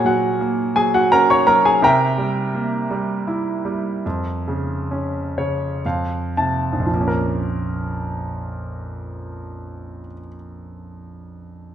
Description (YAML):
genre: classical, lyrical solo piano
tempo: 56-86 BPM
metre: 3/4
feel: rubato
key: Bb minor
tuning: A4 = 440 Hz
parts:
  - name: warm concert grand piano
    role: solo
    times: 0.0-11.7 s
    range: Bb1 to Db6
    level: -19 LUFS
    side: right 1 dB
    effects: none
room: moderate scoring stage reverb, RT60 1.7 s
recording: minimal, uncompressed stereo recording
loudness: -18 LUFS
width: side -10 dB against mid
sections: 0.0-6.9 A section; 6.9-10.0 B section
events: slowing down 1.8-6.9; grand piano fill 4.9-6.9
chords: 0.0 Gb/Bb; 1.8 C7; 4.0 Bbm/F; 5.8 F; 6.9 Bbm